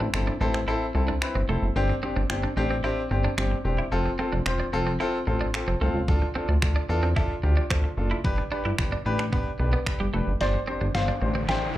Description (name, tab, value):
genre	dance-pop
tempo	111 BPM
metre	4/4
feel	straight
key	unclear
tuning	A4 = 441 Hz
part	clear baby grand piano	accompaniment	0.0-11.7 s	C4 to A5	-29 LUFS	left 2 dB	sidechain pumping, slapback echo
part	twelve-string electric guitar	riff	0.0-11.6 s	G3 to E4	-33 LUFS	right 4 dB	wide subtle chorus, slapback echo
part	chorused synth bass	bass	0.0-11.5 s	E1 to E2	-25 LUFS	equal	sidechain pumping
part	detuned 8-bit digital drum machine	drums	0.1-11.6 s	finger snaps, kick drum, snare drum	-28 LUFS	equal	none
part	mallet-like synth pluck	melody	10.4-11.8 s	D5 to G5	-30 LUFS	left 1 dB	chorus, phaser, slapback echo
part	riser	sound effects	10.6-11.8 s	none	-34 LUFS	equal	slapback echo
room	light reverb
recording	live gig heard through the venue's PA, club reverb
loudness	-23 LUFS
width	side -14 dB against mid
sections	0.0-10.4 A section; 10.4-11.8 B section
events	grand piano fill 5.3-6.1; build-up 10.4-11.8; drum fill 10.4-11.8; filter sweep 10.4-11.8; riser 10.6-11.8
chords	0.0 Am; 1.8 Gsus4; 3.9 F; 6.1 Dm; 8.2 G; 10.4 Gsus4